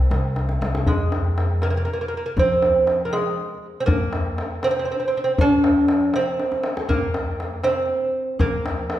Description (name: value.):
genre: Persian modal ensemble.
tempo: 80 BPM (dotted quarters).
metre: 6/8.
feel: straight.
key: F avaz esfahan.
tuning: A4 = 441 Hz.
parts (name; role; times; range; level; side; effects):
lute; melody; 0.0-9.0 s; Ab3 to D4-50c; -21 LUFS; right 1 dB; none.
upright bass; bass; 0.0-9.0 s; C2 to F3; -25 LUFS; equal; none.
tombak; percussion; 0.1-9.0 s; none; -25 LUFS; left 2 dB; none.
room: wet recital hall reverb, RT60 1.5 s.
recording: heard from further back in the room.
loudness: -19 LUFS.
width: side -13 dB against mid.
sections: 0.9-9.0 A section.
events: drum fill 0.4-0.9, 6.4-6.9.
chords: none.